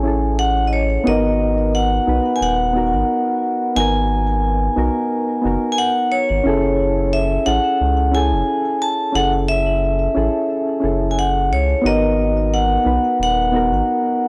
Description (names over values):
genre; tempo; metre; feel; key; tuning
sunset chillout; 89 BPM; 4/4; swing 54% on 16ths; G# phrygian; A4 = 439 Hz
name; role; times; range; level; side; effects
vibraphone with medium hard mallets; melody; 0.0-14.3 s; C#5 to A5; -21 LUFS; equal; none
soft electric-piano-like synth keys; accompaniment; 0.0-14.3 s; B3 to B4; -23 LUFS; equal; chorus
round analog bass; bass; 0.0-13.8 s; D#1 to C#2; -23 LUFS; equal; tube saturation
room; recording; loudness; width
light reverb, studio ambience; dry, gritty hardware recording; -18 LUFS; mono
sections
0.0-1.1 A section; 1.1-14.3 B section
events
none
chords
0.0 F#m9; 1.1 G#m9; 6.5 F#m9; 11.9 G#m9